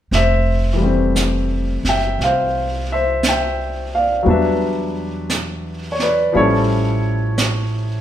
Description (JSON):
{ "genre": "jazz ballad", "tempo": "58 BPM", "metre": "4/4", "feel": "swing 66% on 8ths", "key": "F major", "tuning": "A4 = 440 Hz", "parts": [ { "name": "clear baby grand piano", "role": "accompaniment", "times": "0.1-8.0 s", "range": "E3 to G5", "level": "-18 LUFS", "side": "left 1 dB", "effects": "none" }, { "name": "upright bass", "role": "bass", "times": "0.1-8.0 s", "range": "F1 to E2", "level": "-21 LUFS", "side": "right 1 dB", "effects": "none" }, { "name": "vintage brush drum kit", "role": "drums", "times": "0.1-8.0 s", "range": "brushed snare drum, hi-hat, snare drum", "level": "-24 LUFS", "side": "right 2 dB", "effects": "none" } ], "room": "wet large studio reverb, RT60 1.1 s", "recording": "band playing live in one room", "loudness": "-16 LUFS", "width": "side -11 dB against mid", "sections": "0.1-8.0 A section", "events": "none", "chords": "0.1 Fmaj9; 4.3 Em7; 6.3 A7b13", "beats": "| 0.12 1.16 2.19 3.23 | 4.26 5.30 6.33 7.37" }